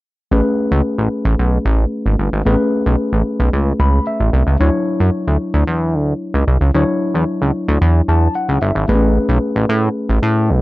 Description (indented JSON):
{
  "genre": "early-eighties boogie funk",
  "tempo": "112 BPM",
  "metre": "4/4",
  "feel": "straight",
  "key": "A major",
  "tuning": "A4 = 439 Hz",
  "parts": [
    { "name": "tine electric piano", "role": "accompaniment", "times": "0.3-10.6 s", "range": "F#3 to B5", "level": "-19 LUFS", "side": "left 2 dB", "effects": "none" },
    { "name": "chorused synth bass", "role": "bass", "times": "0.3-10.6 s", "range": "G1 to A2", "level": "-14 LUFS", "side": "equal", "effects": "none" }
  ],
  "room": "little or no reverb",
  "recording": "none",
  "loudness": "-14 LUFS",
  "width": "side -18 dB against mid",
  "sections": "0.3-8.9 A section; 8.9-10.6 B section",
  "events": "tine electric piano fill 3.5-4.6, 7.8-8.9",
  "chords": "0.3 Amaj9; 4.6 Dmaj9; 8.9 Amaj9",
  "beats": "| 0.32 0.85 1.39 1.92 | 2.46 3.00 3.53 4.07 | 4.60 5.14 5.67 6.21 | 6.75 7.28 7.82 8.35 | 8.89 9.42 9.96 10.49"
}